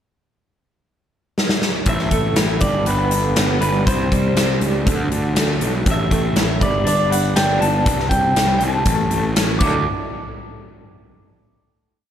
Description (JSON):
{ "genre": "quiet-loud alternative rock", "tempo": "120 BPM", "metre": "4/4", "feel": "straight", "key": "unclear", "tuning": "A4 = 441 Hz", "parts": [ { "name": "big rock drum kit", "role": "drums", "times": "1.4-9.7 s", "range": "crash cymbal, hi-hat, kick drum, snare drum", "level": "-20 LUFS", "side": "equal", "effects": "none" }, { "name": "electric guitar through a small old amp", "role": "melody", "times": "1.9-9.8 s", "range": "B4 to D6", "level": "-22 LUFS", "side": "equal", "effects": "slapback echo" }, { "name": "electric guitar through a small old amp", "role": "arpeggios", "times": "1.9-9.8 s", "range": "G2 to A4", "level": "-23 LUFS", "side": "right 1 dB", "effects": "tremolo, slapback echo" }, { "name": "fuzz picked electric bass", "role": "bass", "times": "1.9-9.8 s", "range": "G1 to D2", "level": "-21 LUFS", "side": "equal", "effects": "overdrive" } ], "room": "wet concert hall reverb, RT60 2.1 s", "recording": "big arena sound", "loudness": "-16 LUFS", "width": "side -9 dB against mid", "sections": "0.0-1.9 pickup bar; 1.9-9.9 pre-chorus; 9.9-11.9 final hit", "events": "drum fill 1.4-1.9, 9.6", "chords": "0.0 N.C.; 1.9 A5; 2.6 G; 3.9 C5; 4.9 D; 5.9 A5; 6.6 G; 7.9 C5; 8.9 A5; 9.6 Dadd9; 9.9 N.C." }